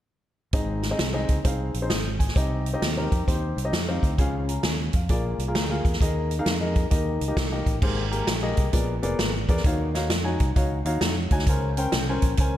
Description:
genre	uptempo gospel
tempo	132 BPM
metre	4/4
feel	swing 65% on 8ths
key	Ab major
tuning	A4 = 440 Hz
part	warm upright piano	accompaniment	0.5-12.6 s	Ab2 to Eb6	-28 LUFS	left 2 dB	slapback echo
part	fingered electric bass	bass	0.5-12.6 s	F1 to F2	-28 LUFS	equal	none
part	swinging big-band drum kit	drums	0.5-12.5 s	crash cymbal, hi-hat, kick drum, snare drum	-24 LUFS	equal	none
room	light reverb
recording	none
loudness	-22 LUFS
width	side -12 dB against mid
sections	0.5-7.8 A section; 7.8-12.6 B section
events	none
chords	0.5 Ab; 2.4 Cm; 4.2 Db; 5.1 Bb7; 6.0 Ebsus4; 6.9 Eb; 7.8 Abmaj9; 8.7 Bb7b9; 9.6 Ebm9; 11.5 Bbm9

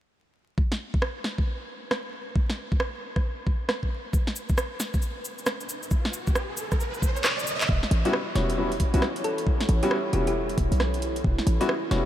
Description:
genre	UK garage, two-step garage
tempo	135 BPM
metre	4/4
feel	swing 63% on 16ths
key	E dorian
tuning	A4 = 440 Hz
part	electronic kick drum	drums	0.6-11.4 s	none	-25 LUFS	equal	overdrive, small room ambience
part	garage drum kit	drums	0.7-12.0 s	handclaps, hi-hat, rim click, snare drum	-30 LUFS	right 1 dB	overdrive, small room ambience
part	cabasa	percussion	4.1-7.7 s	none	-37 LUFS	left 2 dB	none
part	riser	sound effects	5.5-7.7 s	none	-36 LUFS	right 2 dB	none
part	short 808-style bass	bass	7.7-12.1 s	E1 to B1	-25 LUFS	equal	none
part	warbly tape-like pad	texture	8.3-12.1 s	E4 to C#5	-34 LUFS	right 1 dB	chorus, built-in reverb, sidechain pumping
part	warm concert grand piano	stabs	8.1-12.1 s	G3 to F#4	-28 LUFS	left 2 dB	none
part	thumb-piano-like synth pluck	melody	8.4-12.1 s	G4 to C#5	-33 LUFS	equal	chorus, analog delay
room	moderate huge ambient reverb, RT60 8.1 s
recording	dreamy mix soaked in reverb, vinyl crackle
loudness	-24 LUFS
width	side -12 dB against mid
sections	0.6-7.7 A section; 7.7-12.1 B section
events	riser 5.5-7.7; kick drops out 7.2-7.7; drum fill 7.2-7.7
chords	0.6 N.C.; 7.7 Em69

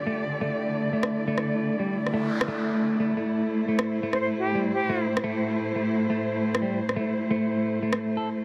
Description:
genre	half-time drum and bass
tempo	174 BPM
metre	4/4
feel	swing 57% on 16ths, half-time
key	A minor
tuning	A4 = 440 Hz
part	dark symphonic cello section	sustained chords	0.0-8.4 s	A2 to D5	-30 LUFS	equal	none
part	clean electric guitar	arpeggios	0.1-8.3 s	G3 to A4	-30 LUFS	equal	low-pass filter, dub echo
part	electronic rim click	drums	1.0-8.0 s	none	-28 LUFS	equal	none
part	noise sweep	sound effects	2.0-3.2 s	none	-40 LUFS	equal	none
part	bright reedy silver concert flute	melody	4.1-5.1 s	G4 to C5	-35 LUFS	equal	dub echo
room	light reverb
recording	none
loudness	-26 LUFS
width	mono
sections	0.0-8.4 A section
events	noise sweep 2.0-3.2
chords	0.0 Dm; 3.2 Am

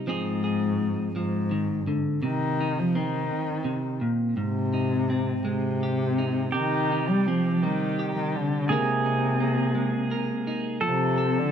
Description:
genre	acoustic folk-pop ballad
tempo	56 BPM (dotted quarters)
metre	6/8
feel	straight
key	C minor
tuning	A4 = 440 Hz
part	clean electric guitar	accompaniment	0.0-11.5 s	Ab2 to Bb4	-28 LUFS	right 2 dB	none
part	dark cello	melody	0.1-11.5 s	Ab2 to G3	-26 LUFS	left 2 dB	none
part	pedal steel guitar	second line	6.5-11.5 s	G4 to A4	-29 LUFS	right 4 dB	none
room	moderate stone room reverb, RT60 1.1 s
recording	band playing live in one room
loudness	-23 LUFS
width	side -8 dB against mid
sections	0.0-11.5 A section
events	none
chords	0.1 Fm7; 2.2 Cm; 4.4 Abmaj7; 6.5 Cm; 8.7 Abadd9/C; 10.8 F

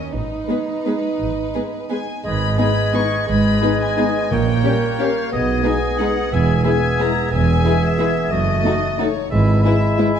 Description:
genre	classical, orchestral ballroom waltz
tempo	160-195 BPM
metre	3/4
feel	rubato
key	G# minor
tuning	A4 = 440 Hz
part	warm chamber violin section	melody	0.0-10.2 s	B4 to C#6	-28 LUFS	left 6 dB	none
part	warm chamber cello section	bass	0.0-9.6 s	E2 to D#4	-23 LUFS	right 3 dB	none
part	warm chamber double bass section	bass	0.0-9.6 s	E1 to B1	-21 LUFS	right 2 dB	none
part	warm chamber violin section	second line	0.5-10.1 s	E4 to Db5	-29 LUFS	left 3 dB	none
part	dark chamber viola section	accompaniment	0.5-10.1 s	G#3 to E4	-26 LUFS	equal	none
part	small flute group	second line	2.2-10.2 s	B5 to A6	-28 LUFS	left 6 dB	none
part	mellow bassoon	accompaniment	2.2-10.2 s	G#3 to B3	-24 LUFS	right 3 dB	none
part	bright clarinet	second line	2.3-10.2 s	E4 to B4	-28 LUFS	left 4 dB	none
part	bright oboe	second line	2.3-10.2 s	Db5 to E5	-29 LUFS	right 1 dB	none
part	mellow French horn section	sustained chords	2.6-10.1 s	G3 to E4	-26 LUFS	left 7 dB	none
part	timpani	percussion	4.3-4.8 s	Bb2	-28 LUFS	right 1 dB	none
room	wet scoring stage reverb, RT60 1.7 s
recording	dark, warm production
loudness	-16 LUFS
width	side -8 dB against mid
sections	0.0-2.2 A section; 2.2-10.2 B section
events	none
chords	0.1 G#m; 4.3 Gdim/Bb; 5.3 G#m/B; 6.3 E; 8.3 D#dim/F#; 9.3 E/G#

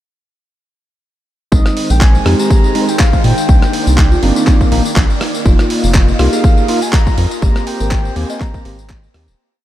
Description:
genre	deep house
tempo	122 BPM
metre	4/4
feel	swing 55% on 16ths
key	unclear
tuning	A4 = 440 Hz
part	breathy flute-like synth lead	melody	1.5-8.9 s	Eb5 to Bb5	-24 LUFS	equal	wide subtle chorus, diffuse ambient delay
part	soft string machine	sustained chords	1.5-9.4 s	Eb3 to Eb5	-22 LUFS	left 1 dB	phaser, ensemble chorus, sidechain pumping
part	bell-like tine electric piano	stabs	1.5-9.2 s	Ab3 to Bb4	-19 LUFS	right 1 dB	sidechain pumping, diffuse ambient delay
part	round analog bass	bass	1.5-9.4 s	Eb1 to Bb2	-14 LUFS	equal	tube saturation, sidechain pumping
part	dusty soul sampler-style drum kit	drums	1.5-9.4 s	handclaps, hi-hat, rim click, tambourine	-21 LUFS	equal	overdrive, small room ambience
part	electronic kick drum	drums	1.5-9.0 s	none	-11 LUFS	equal	overdrive, small room ambience
part	folk marimba with soft mallets	melody	2.3-9.0 s	C4 to Eb5	-24 LUFS	right 2 dB	none
room	light reverb, digital ambience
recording	none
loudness	-10 LUFS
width	side -13 dB against mid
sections	1.5-9.4 drop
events	drop 1.5-9.4; fade-out 6.8-9.4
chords	1.5 Bb9sus4; 3.5 Cm9; 5.5 F7sus4; 7.4 Abmaj9

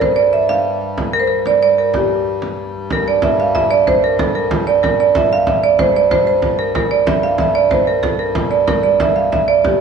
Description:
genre	medieval dance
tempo	125 BPM (dotted quarters)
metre	6/8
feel	straight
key	G dorian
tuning	A4 = 436 Hz
part	marimba with medium hard mallets	melody	0.0-9.8 s	G4 to F5	-13 LUFS	right 3 dB	none
part	hand-pumped harmonium	drone	0.0-9.8 s	G2	-25 LUFS	left 2 dB	none
part	frame drum	percussion	0.0-9.8 s	none	-21 LUFS	right 2 dB	none
room	wet recital hall reverb, RT60 1.3 s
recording	none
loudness	-12 LUFS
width	side -6 dB against mid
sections	0.0-2.9 A section; 2.9-9.8 B section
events	none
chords	none

